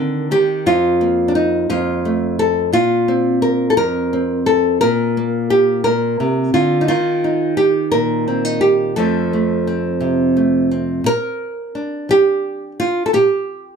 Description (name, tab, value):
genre	folk, solo fingerstyle acoustic guitar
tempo	58 BPM (dotted quarters)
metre	6/8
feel	straight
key	Bb major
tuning	A4 = 443 Hz
part	nylon-string guitar	solo	0.0-13.8 s	F2 to Bb4	-14 LUFS	equal	none
room	moderate studio reverb, RT60 0.5 s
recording	dark, warm production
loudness	-14 LUFS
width	side -6 dB against mid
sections	0.0-11.0 A section; 11.0-13.8 B section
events	none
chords	0.0 Eb; 0.7 Fsus4; 1.7 F; 2.7 Bbsus2; 4.8 Bb69; 6.9 Eb5; 9.0 F; 11.0 Bbadd9; 13.1 Gm/Bb